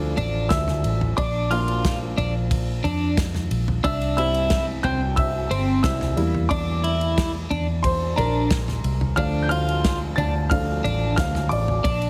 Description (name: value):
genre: piano-driven pop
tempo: 90 BPM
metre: 4/4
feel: straight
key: D minor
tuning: A4 = 440 Hz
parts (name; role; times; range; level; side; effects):
- warm upright piano; accompaniment; 0.0-12.1 s; F3 to A6; -29 LUFS; equal; none
- vintage muted fingered electric bass; bass; 0.0-12.1 s; G1 to F2; -27 LUFS; equal; none
- twelve-string electric guitar; riff; 0.2-12.1 s; C4 to F4; -28 LUFS; equal; none
- natural country drum kit; drums; 0.2-12.1 s; kick drum, ride cymbal, snare drum, toms; -29 LUFS; equal; none
room: light reverb, studio ambience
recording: heavily compressed radio sound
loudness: -23 LUFS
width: mono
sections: 0.0-12.1 A section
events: upright piano solo 0.0-12.1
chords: 0.0 Dm; 1.2 Bb; 3.8 C; 6.2 Edim; 9.2 Dm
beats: 0.51 | 1.18 1.84 2.51 3.18 | 3.84 4.51 5.18 5.84 | 6.51 7.18 7.84 8.51 | 9.18 9.84 10.51 11.18 | 11.85